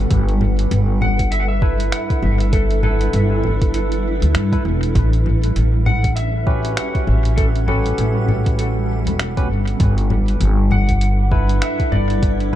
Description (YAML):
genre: ambient dub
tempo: 99 BPM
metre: 4/4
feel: swing 59% on 16ths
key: unclear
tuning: A4 = 440 Hz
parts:
  - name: granular cloud pad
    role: sustained chords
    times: 0.0-12.6 s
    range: G3 to F#5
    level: -26 LUFS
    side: right 2 dB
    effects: built-in reverb
  - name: upright bass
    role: bass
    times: 0.0-12.6 s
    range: E1 to G2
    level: -17 LUFS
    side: equal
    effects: none
  - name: electronic kick drum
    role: drums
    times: 0.1-12.4 s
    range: none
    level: -19 LUFS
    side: equal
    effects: none
  - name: lo-fi sampler-style drum kit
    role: drums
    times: 0.1-12.6 s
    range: congas, finger snaps, hi-hat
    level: -26 LUFS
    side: left 2 dB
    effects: overdrive, dub echo
  - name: electric slide guitar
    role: melody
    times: 1.0-12.6 s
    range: A4 to F#5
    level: -26 LUFS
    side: left 1 dB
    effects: dub echo
  - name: barky tine electric piano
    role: stabs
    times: 1.6-12.6 s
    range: C#4 to B4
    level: -28 LUFS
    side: right 2 dB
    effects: wide subtle chorus, dub echo
room: little or no reverb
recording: dark, warm production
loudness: -15 LUFS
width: side -12 dB against mid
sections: 0.0-12.6 A section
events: none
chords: 0.1 G69; 5.0 A13; 9.8 G69